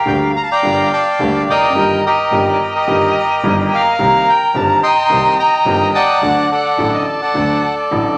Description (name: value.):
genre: tango.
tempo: 107 BPM.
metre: 4/4.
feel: rubato.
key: G minor.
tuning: A4 = 439 Hz.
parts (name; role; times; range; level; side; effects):
bandoneon; melody; 0.0-8.2 s; G4 to C6; -17 LUFS; equal; none.
dark violin; second line; 0.0-8.2 s; Eb5 to Bb5; -21 LUFS; equal; none.
warm upright piano; accompaniment; 0.1-8.2 s; G1 to G4; -21 LUFS; equal; none.
clear double bass; bass; 0.1-8.2 s; F1 to D2; -28 LUFS; equal; none.
room: wet club reverb, RT60 0.7 s.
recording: none.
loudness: -14 LUFS.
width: mono.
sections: 0.0-8.2 A section.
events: none.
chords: 0.0 Gm; 1.8 Eb/G; 4.0 Cm7; 6.2 D.